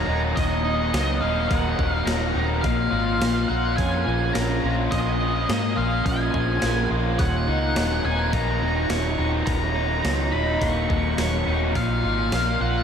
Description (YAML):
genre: rock, shoegaze and dream pop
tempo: 106 BPM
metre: 4/4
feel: straight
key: Eb minor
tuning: A4 = 440 Hz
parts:
  - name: octave-fuzz lead guitar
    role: melody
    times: 0.0-12.8 s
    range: Eb5 to Db6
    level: -27 LUFS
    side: equal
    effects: distortion, analog delay
  - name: crunchy overdriven guitar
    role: riff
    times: 0.0-12.8 s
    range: Eb2 to F4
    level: -24 LUFS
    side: equal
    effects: analog chorus
  - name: vintage muted fingered electric bass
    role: bass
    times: 0.0-12.8 s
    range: Eb1 to Ab2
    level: -26 LUFS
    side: equal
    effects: none
  - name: gated 80s digital drum machine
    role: drums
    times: 0.4-12.5 s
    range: hi-hat, kick drum, snare drum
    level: -30 LUFS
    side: equal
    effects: gated reverb, gated reverb snare
room: wet huge ambient reverb, RT60 7.3 s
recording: dreamy mix soaked in reverb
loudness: -20 LUFS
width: side -7 dB against mid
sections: 0.0-12.8 A section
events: none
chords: 0.0 Ebm; 2.6 Bbm7; 7.2 Ebm7; 11.7 Bb7(no3)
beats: | 0.37 0.94 1.50 2.07 | 2.64 3.21 3.78 4.35 | 4.92 5.49 6.06 6.63 | 7.20 7.76 8.33 8.90 | 9.47 10.04 10.61 11.18 | 11.75 12.32